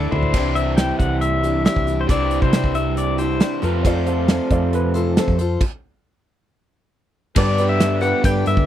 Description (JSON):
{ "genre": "folk rock and heartland rock", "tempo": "137 BPM", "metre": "4/4", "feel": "straight", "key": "unclear", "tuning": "A4 = 438 Hz", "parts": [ { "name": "pedal steel guitar", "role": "melody", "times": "0.0-3.6, 7.4-8.7 s", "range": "A4 to G5", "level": "-23 LUFS", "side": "left 3 dB", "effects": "none" }, { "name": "picked acoustic archtop guitar", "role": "accompaniment", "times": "0.0-8.7 s", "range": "G2 to D5", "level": "-25 LUFS", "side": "left 6 dB", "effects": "none" }, { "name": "crunchy overdriven guitar", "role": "riff", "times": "0.0-8.7 s", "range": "F2 to G4", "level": "-23 LUFS", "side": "right 3 dB", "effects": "none" }, { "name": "hollow-body short-scale fingered electric bass", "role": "bass", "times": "0.0-8.7 s", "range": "C2 to C3", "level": "-22 LUFS", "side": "equal", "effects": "none" }, { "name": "loose indie drum kit", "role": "drums", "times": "0.1-8.7 s", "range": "crash cymbal, hi-hat, kick drum, snare drum, toms", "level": "-20 LUFS", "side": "right 1 dB", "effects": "none" }, { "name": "dark upright piano", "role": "second line", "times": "3.6-5.5 s", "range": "A4 to D5", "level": "-28 LUFS", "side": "right 2 dB", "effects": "none" }, { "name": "clear baby grand piano", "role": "accompaniment", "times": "3.8-8.6 s", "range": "G4 to F5", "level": "-29 LUFS", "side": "right 5 dB", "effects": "none" }, { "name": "accordion", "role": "sustained chords", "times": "7.4-8.7 s", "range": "B4 to D6", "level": "-34 LUFS", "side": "right 4 dB", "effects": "none" } ], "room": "little or no reverb", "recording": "dry, close 1970s-style studio recording", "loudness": "-16 LUFS", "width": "side -11 dB against mid", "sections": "0.3-7.4 A section; 7.4-8.7 B section", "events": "drum fill 0.0-0.3; stop 5.6-7.4", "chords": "0.3 Cadd9; 3.6 F; 7.4 G", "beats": "| 0.34 0.78 1.22 1.66 | 2.10 2.54 2.98 3.41 | 3.85 4.29 4.73 5.17 | 5.61 6.05 6.49 6.93 | 7.37 7.80 8.24" }